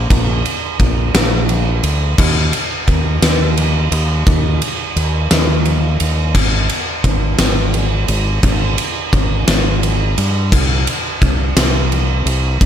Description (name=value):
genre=post-rock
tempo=58 BPM (dotted quarters)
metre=6/8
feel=straight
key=unclear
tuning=A4 = 438 Hz
part: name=growling fingered electric bass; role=bass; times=0.0-12.7 s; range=Ab1 to G2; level=-16 LUFS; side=equal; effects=overdrive
part: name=huge arena drum kit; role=drums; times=0.1-12.7 s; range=crash cymbal, kick drum, ride cymbal, snare drum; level=-15 LUFS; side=equal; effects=none
room=little or no reverb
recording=none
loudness=-13 LUFS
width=side -9 dB against mid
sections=0.0-12.7 A section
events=none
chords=none